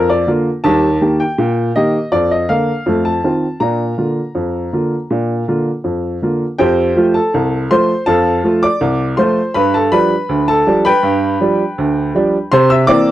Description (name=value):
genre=ragtime piano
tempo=81 BPM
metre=2/4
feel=straight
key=Bb major, F major from 6.6 s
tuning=A4 = 440 Hz
part: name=clear upright piano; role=solo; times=0.0-13.1 s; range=C2 to E6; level=-12 LUFS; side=equal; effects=none
room=little or no reverb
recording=dry, close 1970s-style studio recording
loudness=-12 LUFS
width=side -14 dB against mid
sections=0.0-6.6 A section; 6.6-13.1 B section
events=none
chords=0.0 Bb; 0.7 Eb; 2.1 Bb/F; 2.9 F7; 3.6 Bb; 6.6 F; 9.6 G7; 12.5 C7